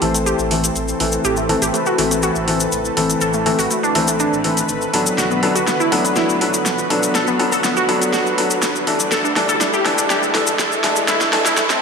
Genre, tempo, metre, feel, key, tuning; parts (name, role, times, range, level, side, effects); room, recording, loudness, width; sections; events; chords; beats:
progressive house; 122 BPM; 4/4; straight; A dorian; A4 = 440 Hz
lush unison pad; sustained chords; 0.0-11.8 s; D3 to C5; -22 LUFS; equal; chorus
glassy wavetable pluck; arpeggios; 0.0-11.8 s; A3 to A4; -21 LUFS; equal; chorus, digital delay
felt-muted upright piano; stabs; 0.0-11.4 s; E3 to A4; -21 LUFS; left 2 dB; low-pass filter, digital delay
dark detuned saw bass; bass; 0.0-11.5 s; A1 to D2; -32 LUFS; right 1 dB; tube saturation
deep house drum kit; drums; 0.0-11.8 s; hi-hat, snare drum; -22 LUFS; right 1 dB
riser; sound effects; 0.0-11.8 s; -28 LUFS; right 1 dB
cabasa; percussion; 0.2-11.8 s; -24 LUFS; left 3 dB
wet recital hall reverb, RT60 1.4 s; high-pass filter; -15 LUFS; side -5 dB against mid
0.0-11.8 A section
build-up 0.0-11.8; riser 0.0-11.8; filter sweep on felt piano 0.0-11.8; drum fill 5.2-11.8
0.0 Am; 5.2 Bm7; 9.1 Dsus2
0.26 0.76 | 1.25 1.74 2.23 2.72 | 3.21 3.71 4.20 4.69 | 5.18 5.67 6.17 6.66 | 7.15 7.64 8.13 8.62 | 9.12 9.61 10.10 10.59 | 11.08 11.57